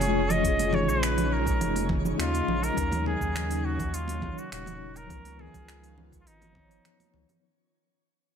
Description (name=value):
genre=sunset chillout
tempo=103 BPM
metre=4/4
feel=straight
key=unclear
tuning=A4 = 444 Hz
part: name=clear flugelhorn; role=melody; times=0.0-7.1 s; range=Eb4 to Eb5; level=-31 LUFS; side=equal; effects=digital delay
part: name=mellow tine electric piano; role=accompaniment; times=0.0-7.5 s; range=F3 to Eb5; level=-32 LUFS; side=moving between left 6 dB and right 6 dB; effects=medium stereo tremolo, auto-pan, vintage 12-bit sampler grit
part: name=airy breathy pad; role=sustained chords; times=0.0-7.4 s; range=Db3 to F4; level=-34 LUFS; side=left 1 dB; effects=chorus
part: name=round analog bass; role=bass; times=0.0-7.3 s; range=Eb1 to Eb2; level=-32 LUFS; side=equal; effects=none
part: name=smooth R&B drum kit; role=drums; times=0.0-7.4 s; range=cabasa, congas, finger snaps, hi-hat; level=-34 LUFS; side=right 3 dB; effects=none
part: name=congas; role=percussion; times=0.0-7.3 s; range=none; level=-36 LUFS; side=right 2 dB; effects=none
part: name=twinkling granular texture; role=texture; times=0.0-7.4 s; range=Db4 to Db5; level=-42 LUFS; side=right 1 dB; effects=built-in reverb
part: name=electronic kick drum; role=drums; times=0.4-6.7 s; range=none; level=-32 LUFS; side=equal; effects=none
room=light reverb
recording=none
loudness=-24 LUFS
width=side -7 dB against mid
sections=0.0-7.4 A section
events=fade-out 0.0-7.4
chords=0.0 Bbm7; 2.8 Ebm7; 5.1 Db13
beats=| 0.44 1.03 1.61 2.19 | 2.77 3.36 3.94 4.52 | 5.10 5.69 6.27 6.85